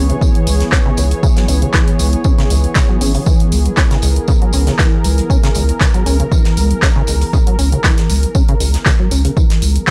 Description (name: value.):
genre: acid house.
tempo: 118 BPM.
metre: 4/4.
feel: swing 53% on 16ths.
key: unclear.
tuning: A4 = 439 Hz.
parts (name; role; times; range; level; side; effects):
lush unison pad; sustained chords; 0.0-9.9 s; Fb3 to Db5; -24 LUFS; equal; chorus, sidechain pumping.
acid bass, saw; riff; 0.0-9.9 s; Db2 to Db4; -23 LUFS; equal; overdrive, analog chorus, analog delay.
saturated sub bass; bass; 0.0-9.8 s; Ab1 to Db2; -16 LUFS; equal; sidechain pumping.
punchy analog drum machine; drums; 0.1-9.9 s; handclaps, hi-hat; -23 LUFS; equal; none.
crisp fusion drum kit; drums; 0.2-9.9 s; hi-hat, snare drum, tambourine; -29 LUFS; equal; high-pass filter on hats, high-pass filter on snare, high-pass filter on perc, high-pass filter on room.
electronic kick drum; drums; 0.2-9.9 s; none; -16 LUFS; equal; none.
room: small room ambience.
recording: dry, gritty hardware recording, transformer saturation.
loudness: -14 LUFS.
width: mono.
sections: 0.0-9.9 A section.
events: none.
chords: 0.0 Dbm7.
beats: 0.21 0.72 | 1.23 1.74 2.25 2.76 | 3.27 3.77 4.28 4.79 | 5.30 5.81 6.32 6.83 | 7.33 7.84 8.35 8.86 | 9.37 9.88.